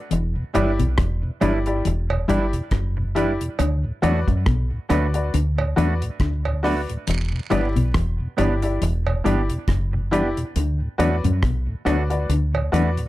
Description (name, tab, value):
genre	roots reggae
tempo	69 BPM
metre	4/4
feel	swing 58% on 16ths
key	E minor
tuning	A4 = 440 Hz
part	mellow electric guitar	riff	0.1-12.9 s	E2 to F#3	-26 LUFS	left 4 dB	tremolo
part	deep dub fingered electric bass	bass	0.1-13.0 s	E1 to F#2	-22 LUFS	equal	none
part	deep reggae drum kit	drums	0.1-13.1 s	hi-hat, kick drum, rim click	-26 LUFS	equal	none
part	mellow tonewheel organ	accompaniment	0.4-13.1 s	D2 to D4	-28 LUFS	equal	slow rotary speaker, dub echo
part	semi-hollow electric guitar	accompaniment	0.5-12.9 s	G3 to B4	-29 LUFS	right 5 dB	tape echo
part	bright upright piano	stabs	0.5-13.0 s	E4 to D5	-24 LUFS	left 2 dB	none
part	cowbell and jawbone-type rattle	percussion	0.6-12.7 s	none	-29 LUFS	right 6 dB	none
room	light reverb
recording	none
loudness	-19 LUFS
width	side -16 dB against mid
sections	0.0-13.1 A section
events	none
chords	0.1 Em7; 3.6 D6; 7.1 Em7; 10.6 D6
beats	| 0.11 0.98 1.85 2.72 | 3.59 4.46 5.33 6.21 | 7.08 7.95 8.81 9.69 | 10.56 11.43 12.30